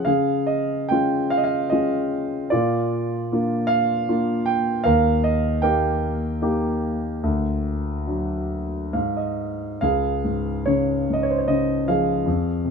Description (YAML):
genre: classical, lyrical solo piano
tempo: 65-80 BPM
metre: 3/4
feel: rubato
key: Db lydian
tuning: A4 = 440 Hz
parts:
  - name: dark concert grand piano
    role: solo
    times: 0.0-12.7 s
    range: Db2 to G5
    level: -20 LUFS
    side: equal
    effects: none
room: light reverb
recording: minimal, uncompressed stereo recording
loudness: -20 LUFS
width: side -5 dB against mid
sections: 0.1-9.8 A section; 9.8-12.7 B section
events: grand piano fill 8.5-9.8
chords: 0.1 Db; 2.5 Bb; 4.9 Eb; 7.2 D; 8.9 N.C.; 9.8 Db